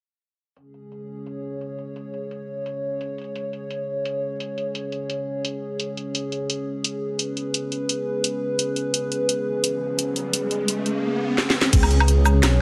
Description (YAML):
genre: half-time drum and bass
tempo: 172 BPM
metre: 4/4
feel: swing 57% on 16ths, half-time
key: unclear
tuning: A4 = 439 Hz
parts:
  - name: dark analog pad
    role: sustained chords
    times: 0.6-12.6 s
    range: C#4 to C#5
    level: -29 LUFS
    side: equal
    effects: chorus, sidechain pumping
  - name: drum and bass drum kit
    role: drums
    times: 0.6-12.5 s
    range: crash cymbal, hi-hat, shaker, snare drum, woodblock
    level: -25 LUFS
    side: equal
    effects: low-pass filter on hats, low-pass filter on snare, low-pass filter on cymbals, low-pass filter on perc, low-pass filter on room
  - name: riser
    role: sound effects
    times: 9.8-11.7 s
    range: none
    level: -32 LUFS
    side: equal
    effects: none
  - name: dark detuned saw bass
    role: bass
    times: 11.7-12.6 s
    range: B1 to C#2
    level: -19 LUFS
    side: equal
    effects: none
  - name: electronic kick drum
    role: drums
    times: 11.7-11.8 s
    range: none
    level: -19 LUFS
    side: equal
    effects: none
room: moderate echo chamber reverb, RT60 1.6 s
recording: none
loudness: -25 LUFS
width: mono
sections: 0.6-11.7 A section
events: riser 9.8-11.7; drum fill 11.4-11.7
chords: 0.6 C#5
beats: | 0.57 0.92 1.26 1.61 | 1.96 2.31 2.66 3.01 | 3.36 3.71 4.06 4.40 | 4.75 5.10 5.45 5.80 | 6.15 6.50 6.85 7.20 | 7.54 7.89 8.24 8.59 | 8.94 9.29 9.64 9.99 | 10.34 10.68 11.03 11.38 | 11.73 12.08 12.43